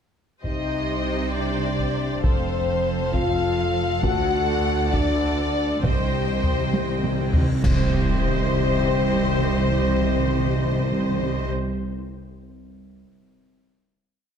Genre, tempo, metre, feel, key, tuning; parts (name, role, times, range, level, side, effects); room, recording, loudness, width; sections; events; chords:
cinematic, epic orchestral film score; 67 BPM (dotted quarters); 6/8; straight; C dorian; A4 = 440 Hz
warm symphonic violin section; melody; 0.4-11.5 s; C5 to F#5; -29 LUFS; left 4 dB
rich symphonic violin section; second line; 0.4-11.5 s; C5 to G5; -34 LUFS; left 3 dB
clear symphonic viola section; accompaniment; 0.4-11.5 s; G4 to C5; -31 LUFS; equal
mellow French horn section; sustained chords; 0.4-11.5 s; C4 to F#4; -28 LUFS; left 4 dB
clear symphonic cello section; bass; 0.4-11.5 s; C2 to C3; -29 LUFS; right 2 dB
rich symphonic double bass section; bass; 0.4-11.5 s; F1 to D2; -27 LUFS; right 3 dB
taiko ensemble; drums; 0.4-8.8 s; -24 LUFS; equal
cymbal swell, clash cymbals and concert bass drum; percussion; 4.0-8.8 s; -30 LUFS; equal
reverse cymbal and impact; sound effects; 7.4-9.4 s; -34 LUFS; equal
timpani; percussion; 5.9-11.5 s; C3; -27 LUFS; equal
moderate scoring stage reverb, RT60 1.7 s; dark, warm production; -20 LUFS; side -7 dB against mid
0.4-7.6 theme; 7.6-11.2 final chord
timpani fill 5.8-7.6; drum fill 6.7-7.6; reverse cymbal 7.4; band accent 7.6-8.2; impact 7.6-9.4
0.4 Cm; 2.2 F; 4.0 D; 5.8 Cm